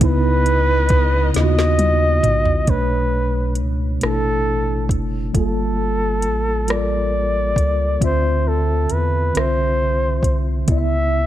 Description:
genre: slow six-eight R&B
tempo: 45 BPM (dotted quarters)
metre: 6/8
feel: straight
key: unclear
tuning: A4 = 439 Hz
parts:
  - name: breathy flugelhorn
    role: melody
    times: 0.0-11.3 s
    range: A4 to E5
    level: -21 LUFS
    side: equal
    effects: none
  - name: mellow tine electric piano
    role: accompaniment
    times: 0.0-11.3 s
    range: B2 to E5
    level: -23 LUFS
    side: right 1 dB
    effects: medium stereo tremolo
  - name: warm studio string section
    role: sustained chords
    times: 0.0-2.7 s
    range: C#3 to D#5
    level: -32 LUFS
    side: left 2 dB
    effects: none
  - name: round analog bass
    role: bass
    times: 0.0-11.3 s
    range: F#1 to E2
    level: -20 LUFS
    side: equal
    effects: none
  - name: smooth R&B drum kit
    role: drums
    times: 0.0-10.9 s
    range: hi-hat, kick drum, rim click, snare drum, toms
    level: -20 LUFS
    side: equal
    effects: none
room: little or no reverb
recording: none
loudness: -16 LUFS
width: side -12 dB against mid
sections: 0.0-2.7 A section; 2.7-11.3 B section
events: drum fill 1.3-2.7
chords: 0.0 C#m9; 2.7 Bm9; 5.3 Gm9; 8.0 Dm9; 10.7 C#m7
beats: | 0.01 1.34 | 2.68 4.01 | 5.34 6.68 | 8.01 9.34 | 10.68

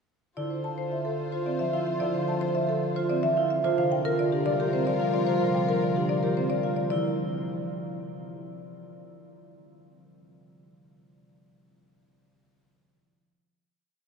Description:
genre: classical, minimalist pattern music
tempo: 110 BPM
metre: 3/4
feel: straight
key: D minor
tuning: A4 = 440 Hz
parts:
  - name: marimba with medium mallets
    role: melody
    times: 0.4-7.2 s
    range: G4 to A5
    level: -29 LUFS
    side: left 2 dB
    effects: none
  - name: warm French horn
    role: second line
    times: 0.4-6.7 s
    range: F4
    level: -36 LUFS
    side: left 2 dB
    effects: none
  - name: concert harp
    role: accompaniment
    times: 0.4-8.6 s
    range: C3 to C4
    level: -31 LUFS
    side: right 2 dB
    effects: none
  - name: warm studio violin section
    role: sustained chords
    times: 0.4-6.7 s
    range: F4 to C5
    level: -36 LUFS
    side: left 4 dB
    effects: none
  - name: vibraphone with medium hard mallets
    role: arpeggios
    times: 0.4-7.2 s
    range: C4 to C5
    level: -32 LUFS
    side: right 4 dB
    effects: none
room: wet cathedral reverb, RT60 5.7 s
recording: heard from further back in the room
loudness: -24 LUFS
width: side -5 dB against mid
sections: 0.4-6.9 A section; 6.9-8.6 final chord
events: none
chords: 0.4 Dm7; 3.6 Gm7; 6.9 Dm7 (rootless)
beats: | 0.37 0.91 1.46 | 2.00 2.55 3.10 | 3.64 4.19 4.73 | 5.28 5.82 6.37 | 6.91 7.46 8.01

